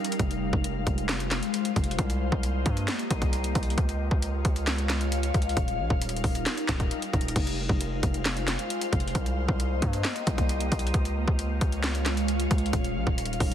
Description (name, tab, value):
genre	hip hop, trap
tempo	134 BPM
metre	4/4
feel	half-time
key	F minor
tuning	A4 = 439 Hz
part	ethereal airy pad	sustained chords	0.0-13.5 s	G3 to F5	-31 LUFS	left 1 dB	ensemble chorus, built-in reverb, phaser
part	trap drum kit	drums	0.0-13.5 s	crash cymbal, handclaps, hi-hat, kick drum, snare drum	-28 LUFS	equal	none
part	distorted 808-style bass	bass	0.2-13.5 s	Eb1 to G2	-29 LUFS	equal	distortion
room	digital ambience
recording	heavily compressed radio sound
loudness	-25 LUFS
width	side -10 dB against mid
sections	0.0-7.4 A section; 7.4-13.5 A section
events	break 0.0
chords	0.2 Fm; 2.0 Cm7; 3.8 Db; 5.6 Ebadd9; 7.4 Fm; 9.2 Cm7; 10.9 Db; 12.7 Ebadd9